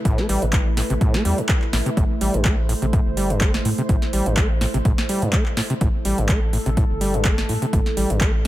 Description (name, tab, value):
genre	acid house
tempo	125 BPM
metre	4/4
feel	swing 54% on 16ths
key	A minor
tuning	A4 = 440 Hz
part	warbly tape-like pad	sustained chords	0.0-8.5 s	A3 to C5	-28 LUFS	right 1 dB	chorus, built-in reverb, sidechain pumping
part	overdriven acid bass	riff	0.1-8.5 s	G2 to A3	-24 LUFS	equal	vintage 12-bit sampler grit, sidechain pumping, digital delay
part	round analog bass	bass	0.1-8.5 s	G1 to A2	-24 LUFS	equal	sidechain pumping
part	booming analog drum machine	drums	0.1-8.5 s	handclaps, hi-hat, snare drum	-26 LUFS	equal	none
part	electronic kick drum	drums	0.1-8.3 s	none	-20 LUFS	equal	overdrive
room	digital ambience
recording	none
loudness	-18 LUFS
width	side -15 dB against mid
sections	0.0-8.5 A section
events	none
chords	0.0 Am